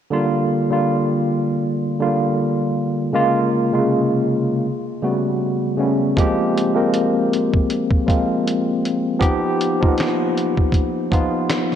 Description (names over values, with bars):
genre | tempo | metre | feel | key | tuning
lo-fi hip hop | 79 BPM | 4/4 | swing 59% on 16ths | G phrygian | A4 = 439 Hz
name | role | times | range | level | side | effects
barky tine electric piano | accompaniment | 0.1-11.8 s | C3 to Bb4 | -17 LUFS | equal | fast stereo tremolo, cassette tape
dusty soul sampler-style drum kit | drums | 6.2-11.8 s | finger snaps, hi-hat, kick drum, snare drum | -20 LUFS | equal | none
room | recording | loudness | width
wet plate reverb, RT60 3.6 s | dreamy mix soaked in reverb, cassette tape | -17 LUFS | side -9 dB against mid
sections
0.1-11.8 A section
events
none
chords
0.1 Gm7; 3.1 Bbm7; 4.7 A13; 6.2 Abmaj13; 9.2 G7alt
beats
| 0.10 0.86 1.61 2.38 | 3.13 3.89 4.65 5.41 | 6.17 6.93 7.69 8.45 | 9.21 9.97 10.73 11.49